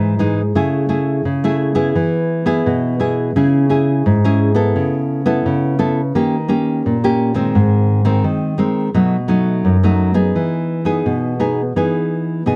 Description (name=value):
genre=samba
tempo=86 BPM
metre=4/4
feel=straight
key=unclear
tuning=A4 = 440 Hz
part: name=nylon-string guitar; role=solo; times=0.0-12.6 s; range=F#2 to A4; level=-16 LUFS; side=equal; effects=none
room=moderate studio ambience, RT60 0.5 s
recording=dark, warm production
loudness=-16 LUFS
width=mono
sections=0.0-10.3 A section; 10.3-12.6 B section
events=none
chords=0.0 C#madd9 (rootless); 0.6 Amaj7/C#; 2.0 E; 3.4 C#m; 4.8 Aadd9/C#; 6.2 D#7; 7.5 G#; 8.9 B7; 10.3 Emaj7